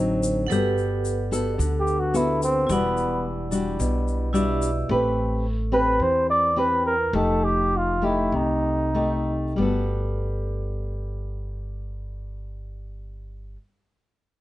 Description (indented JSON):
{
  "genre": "bossa nova",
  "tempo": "93-109 BPM",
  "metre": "4/4",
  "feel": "straight",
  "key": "G major",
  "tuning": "A4 = 442 Hz",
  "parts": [
    { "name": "nylon-string guitar", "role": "accompaniment", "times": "0.0-13.6 s", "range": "B2 to B4", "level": "-25 LUFS", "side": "left 2 dB", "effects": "none" },
    { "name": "vibraphone with medium hard mallets", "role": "accompaniment", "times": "0.0-4.9 s", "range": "E4 to F#5", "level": "-29 LUFS", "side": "right 3 dB", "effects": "none" },
    { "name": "upright bass", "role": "bass", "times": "0.0-13.6 s", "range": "E1 to E2", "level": "-28 LUFS", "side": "equal", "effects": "none" },
    { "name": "egg shaker", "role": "percussion", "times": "0.2-4.9 s", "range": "none", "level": "-35 LUFS", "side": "left 4 dB", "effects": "none" },
    { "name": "breathy flugelhorn", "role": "melody", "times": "1.8-9.4 s", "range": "B3 to D5", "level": "-22 LUFS", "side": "equal", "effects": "none" }
  ],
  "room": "light reverb",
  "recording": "nothing above 10.5 kHz",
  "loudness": "-21 LUFS",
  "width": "side -16 dB against mid",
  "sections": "0.5-9.6 A section; 9.6-12.2 B section",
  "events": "flugelhorn solo 0.5-9.6; slowing down 4.9-9.6",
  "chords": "0.5 Gmaj9; 2.7 Em9; 4.9 Am9; 7.1 F9; 9.6 Gmaj9"
}